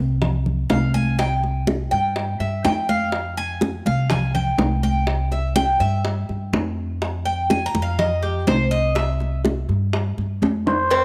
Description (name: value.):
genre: latin, Cuban son and guajira.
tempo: 123 BPM.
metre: 4/4.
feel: straight.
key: F minor.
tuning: A4 = 440 Hz.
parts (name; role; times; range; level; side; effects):
upright bass; bass; 0.0-11.0 s; C2 to G2; -25 LUFS; equal; none.
bongos and cowbell; percussion; 0.2-11.0 s; none; -28 LUFS; equal; none.
congas; percussion; 0.2-11.0 s; none; -28 LUFS; equal; none.
Cuban tres; arpeggios; 0.7-11.0 s; C4 to Bb5; -26 LUFS; equal; none.
trumpet with cup mute; melody; 10.7-11.0 s; C5; -21 LUFS; equal; slapback echo.
room: moderate echo chamber reverb, RT60 1.6 s, studio reverb.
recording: none.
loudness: -21 LUFS.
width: mono.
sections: 0.0-10.9 A section.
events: Cuban tres solo 0.0-10.9; drum fill 10.4-10.9.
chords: 0.0 F5; 1.2 C5; 3.1 Fm; 5.1 C; 7.0 F5; 9.0 C.